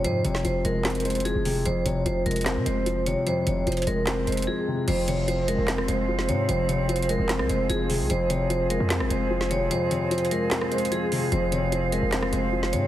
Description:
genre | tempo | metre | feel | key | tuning
hip hop, trap | 149 BPM | 4/4 | half-time | F minor | A4 = 441 Hz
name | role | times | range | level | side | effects
vibraphone with hard mallets | melody | 0.0-12.9 s | Ab4 to Db5 | -28 LUFS | right 2 dB | low-pass filter
dark concert grand piano | accompaniment | 0.0-12.9 s | F2 to C4 | -27 LUFS | left 3 dB | low-pass filter
hard-hitting 808-style bass | bass | 0.0-12.9 s | E1 to C3 | -29 LUFS | right 1 dB | none
trap drum kit | drums | 0.0-12.8 s | crash cymbal, handclaps, hi-hat, rim click, snare drum | -31 LUFS | right 1 dB | none
flute section | sustained chords | 4.9-12.9 s | C4 to F5 | -32 LUFS | right 4 dB | none
room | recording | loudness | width
light reverb, studio ambience | heavily compressed radio sound, multiband compression | -22 LUFS | side -12 dB against mid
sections
0.0-4.9 A section; 4.9-12.9 B section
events
drums muted 4.5-4.9; kick muted 9.7-11.3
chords
0.0 Fm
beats
| 0.04 0.45 0.85 1.25 | 1.66 2.06 2.46 2.86 | 3.27 3.67 4.07 4.47 | 4.88 5.28 5.68 6.08 | 6.49 6.89 7.29 7.70 | 8.10 8.50 8.90 9.31 | 9.71 10.11 10.51 10.92 | 11.32 11.72 12.12 12.53

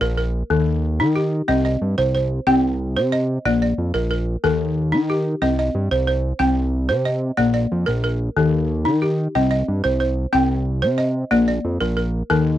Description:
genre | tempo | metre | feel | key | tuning
west african traditional, West African string and xylophone music | 122 BPM (dotted quarters) | 12/8 | straight | C minor | A4 = 440 Hz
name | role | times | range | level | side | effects
balafon | arpeggios | 0.0-12.6 s | Eb3 to G5 | -20 LUFS | left 1 dB | none
fat analog bass | bass | 0.0-12.6 s | Bb1 to Eb3 | -21 LUFS | equal | none
room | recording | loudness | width
little or no reverb | dry, close 1970s-style studio recording | -18 LUFS | side -12 dB against mid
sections
0.0-12.6 A section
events
none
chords
0.0 Bb; 0.5 Eb; 1.5 Cm; 3.5 Bb; 4.4 Eb; 5.4 Cm; 7.4 Bb; 8.4 Eb; 9.4 Cm; 11.3 Bb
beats
0.01 0.50 1.00 | 1.49 1.98 2.48 2.97 | 3.46 3.95 4.44 4.93 | 5.42 5.92 6.41 6.90 | 7.39 7.88 8.37 8.86 | 9.35 9.84 10.33 10.82 | 11.32 11.81 12.30

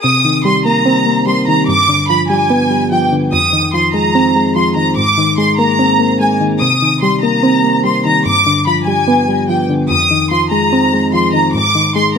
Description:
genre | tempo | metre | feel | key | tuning
hip hop | 146 BPM | 4/4 | half-time | C minor | A4 = 439 Hz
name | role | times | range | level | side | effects
warm studio violin section | melody | 0.0-12.2 s | G5 to Eb6 | -13 LUFS | equal | none
soft electric-piano-like synth keys | accompaniment | 0.0-12.2 s | F2 to C4 | -13 LUFS | equal | chorus
room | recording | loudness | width
moderate concert hall reverb, RT60 1.8 s, small room reverb | none | -10 LUFS | side -6 dB against mid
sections
0.0-12.2 A section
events
none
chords
0.0 Cm7; 1.7 G7; 3.3 Fm7; 5.0 Abadd9; 6.6 Cm7; 8.3 G7; 9.9 Fm7; 11.5 Ab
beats
| 0.04 0.45 0.86 1.27 | 1.68 2.09 2.50 2.92 | 3.33 3.74 4.15 4.56 | 4.97 5.38 5.79 6.20 | 6.61 7.02 7.43 7.85 | 8.26 8.67 9.08 9.49 | 9.90 10.31 10.72 11.13 | 11.54 11.96

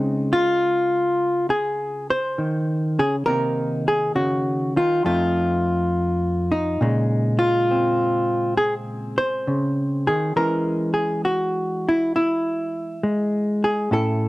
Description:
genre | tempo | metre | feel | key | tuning
solo jazz | 68 BPM | 4/4 | swing 68% on 8ths | unclear | A4 = 442 Hz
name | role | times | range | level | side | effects
hollow-body jazz guitar | solo | 0.0-14.3 s | F2 to C5 | -19 LUFS | equal | none
room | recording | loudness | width
digital ambience | dry, close 1970s-style studio recording | -19 LUFS | side -18 dB against mid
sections
0.0-14.3 A section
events
none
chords
0.0 Dbmaj9; 3.3 Cm7b5; 5.0 F7; 6.8 Bbm11; 10.4 E69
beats
0.59 1.48 2.37 | 3.26 4.14 5.03 5.92 | 6.81 7.70 8.58 9.47 | 10.36 11.25 12.14 13.03 | 13.92

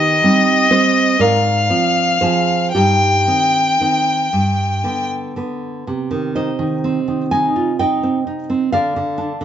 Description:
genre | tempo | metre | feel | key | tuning
romantic duo for violin and classical guitar | 37-46 BPM (dotted quarters) | 6/8 | rubato | C minor | A4 = 440 Hz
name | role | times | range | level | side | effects
rich violin | melody | 0.0-5.1 s | Eb5 to G5 | -15 LUFS | left 2 dB | none
nylon-string guitar | accompaniment | 0.0-9.4 s | G2 to Ab5 | -17 LUFS | right 2 dB | none
room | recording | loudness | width
moderate large studio reverb, RT60 1.1 s | band playing live in one room, nothing above 7.6 kHz | -14 LUFS | side -10 dB against mid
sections
0.0-5.9 A section; 5.9-9.4 B section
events
none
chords
0.0 Cm/Eb; 1.2 Fm/Ab; 2.7 Cm/G; 4.3 G; 5.9 Cm; 8.7 Bdim/D (rootless)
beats
1.19 | 2.74 4.32 | 5.88 7.32 | 8.73

